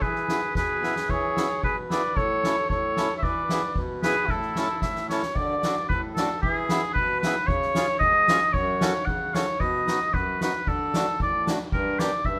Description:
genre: alpine folk, alpine dance band.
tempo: 113 BPM.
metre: 2/4.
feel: straight.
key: A major, D major from 5.4 s.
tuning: A4 = 440 Hz.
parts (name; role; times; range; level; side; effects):
clear oboe; melody; 0.0-12.4 s; G#4 to F#5; -27 LUFS; equal; none.
warm trumpet; second line; 0.0-5.1 s; E4 to C#5; -34 LUFS; equal; none.
accordion; accompaniment; 0.0-12.4 s; F#2 to A4; -32 LUFS; equal; none.
soft-mallet drum kit; drums; 0.0-12.4 s; crash cymbal, hi-hat, kick drum, snare drum; -31 LUFS; equal; none.
room: moderate studio reverb, RT60 0.6 s.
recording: none.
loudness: -25 LUFS.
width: mono.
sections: 0.0-5.4 A section; 5.4-12.4 B section.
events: drum fill 0.6-1.1, 4.8-5.4.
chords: 0.0 E; 2.2 A; 3.2 E7; 4.3 A; 5.4 D; 6.4 E; 7.5 C#; 8.5 F#m; 9.6 B; 10.7 D; 11.7 Gm.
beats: | 0.02 0.55 | 1.10 1.64 | 2.17 2.70 | 3.23 3.76 | 4.29 4.82 | 5.36 5.90 | 6.43 6.96 | 7.49 8.01 | 8.54 9.08 | 9.61 10.14 | 10.68 11.20 | 11.73 12.25.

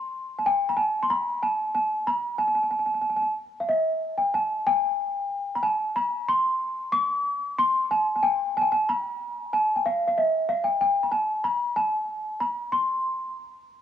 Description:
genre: arabic.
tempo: 93 BPM.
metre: 4/4.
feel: straight.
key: C maqam huzam.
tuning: A4 = 440 Hz.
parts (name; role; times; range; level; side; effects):
worn celesta; solo; 0.0-13.3 s; E5-50c to D6-50c; -23 LUFS; equal; none.
room: moderate lush hall reverb, RT60 2.4 s.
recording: home recording on cassette, small room ambience.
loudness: -23 LUFS.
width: side -10 dB against mid.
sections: 0.0-13.8 A section.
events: none.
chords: none.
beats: 0.45 | 1.10 1.75 2.39 3.04 | 3.69 4.33 4.98 5.62 | 6.27 6.92 7.57 8.21 | 8.86 9.51 10.15 10.80 | 11.45 12.10 12.74.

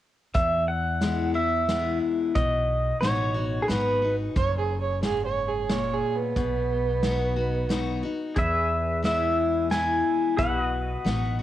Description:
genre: honky-tonk and classic country.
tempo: 90 BPM.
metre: 3/4.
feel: straight.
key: E major.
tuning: A4 = 440 Hz.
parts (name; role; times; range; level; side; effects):
pedal steel guitar; melody; 0.3-4.2, 8.4-11.4 s; G#4 to G#5; -26 LUFS; right 1 dB; cassette tape.
picked steel-string acoustic guitar; accompaniment; 0.3-11.4 s; E2 to F#4; -29 LUFS; left 5 dB; none.
upright bass; bass; 0.3-11.4 s; F#1 to E2; -30 LUFS; right 1 dB; none.
natural country drum kit; drums; 0.3-11.2 s; hi-hat, kick drum, snare drum; -29 LUFS; equal; cassette tape.
dark fiddle; second line; 4.4-8.1 s; B3 to C#5; -27 LUFS; right 5 dB; none.
pedal steel guitar; sustained chords; 8.4-11.4 s; F#4 to E5; -33 LUFS; equal; lush chorus.
room: light reverb, small room ambience.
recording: home recording on cassette.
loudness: -23 LUFS.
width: side -12 dB against mid.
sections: 0.3-11.4 A section.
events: none.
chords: 0.3 E; 2.4 B; 4.4 F#; 6.4 B; 8.4 E; 10.4 B.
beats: | 0.34 1.01 1.68 | 2.35 3.02 3.69 | 4.36 5.02 5.69 | 6.36 7.03 7.70 | 8.37 9.04 9.71 | 10.38 11.05.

